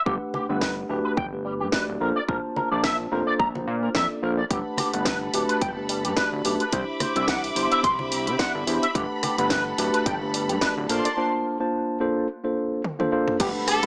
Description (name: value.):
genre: nu-disco, nu disco.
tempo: 108 BPM.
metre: 4/4.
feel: swing 56% on 16ths.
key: unclear.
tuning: A4 = 440 Hz.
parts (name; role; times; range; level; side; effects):
mellow tine electric piano; accompaniment; 0.1-13.9 s; A3 to A5; -29 LUFS; equal; sidechain pumping.
electric guitar with an envelope filter; riff; 0.1-13.9 s; G3 to C6; -29 LUFS; equal; ensemble chorus, analog delay.
fat analog bass; bass; 0.1-13.9 s; D1 to C3; -34 LUFS; equal; none.
electronic kick drum; drums; 0.1-13.5 s; none; -32 LUFS; equal; none.
congas; percussion; 0.3-10.2 s; none; -38 LUFS; equal; none.
house drum kit; drums; 0.6-13.9 s; crash cymbal, hi-hat, rim click, snare drum, toms; -31 LUFS; equal; none.
rich studio string section; sustained chords; 4.5-13.9 s; A4 to D6; -33 LUFS; equal; sidechain pumping.
impact; sound effects; 13.5-13.9 s; none; -41 LUFS; equal; none.
warm studio violin section; melody; 13.7-13.9 s; A4; -24 LUFS; equal; none.
room: light reverb.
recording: small speaker sound.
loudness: -25 LUFS.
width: mono.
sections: 0.0-13.4 A section.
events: drum fill 12.8-13.4; impact 13.4-13.9.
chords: 0.1 Gmaj9; 2.0 Bbmaj9; 4.5 Gmaj9; 6.7 Cmaj9; 9.0 Gmaj9; 10.9 Bbmaj9.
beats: | 0.06 0.62 1.18 1.73 | 2.29 2.84 3.40 3.95 | 4.51 5.06 5.62 6.17 | 6.73 7.29 7.84 8.40 | 8.95 9.51 10.06 10.62 | 11.18 11.73 12.29 12.84 | 13.40.